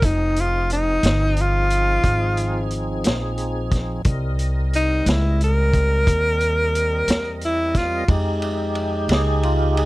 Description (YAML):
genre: slow blues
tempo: 60 BPM (dotted quarters)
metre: 12/8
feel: straight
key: F minor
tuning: A4 = 440 Hz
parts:
  - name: breathy tenor saxophone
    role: melody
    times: 0.0-8.1 s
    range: Eb4 to Bb4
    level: -21 LUFS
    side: equal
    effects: none
  - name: tonewheel organ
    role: sustained chords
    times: 0.0-9.9 s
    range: F3 to D#5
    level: -27 LUFS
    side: right 1 dB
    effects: slow rotary speaker, overdrive, chorus vibrato
  - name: upright bass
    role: bass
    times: 0.0-9.9 s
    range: F1 to F2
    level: -21 LUFS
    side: equal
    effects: none
  - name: vintage drum kit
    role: drums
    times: 0.0-9.9 s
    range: hi-hat, kick drum, ride cymbal, snare drum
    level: -23 LUFS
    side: equal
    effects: none
room: small room ambience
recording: dry, close 1970s-style studio recording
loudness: -18 LUFS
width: side -19 dB against mid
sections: 0.0-8.1 A section; 8.1-9.9 B section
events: tonewheel organ solo 8.1-9.9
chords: 0.0 Fm7; 4.1 C7#9; 8.1 Fm7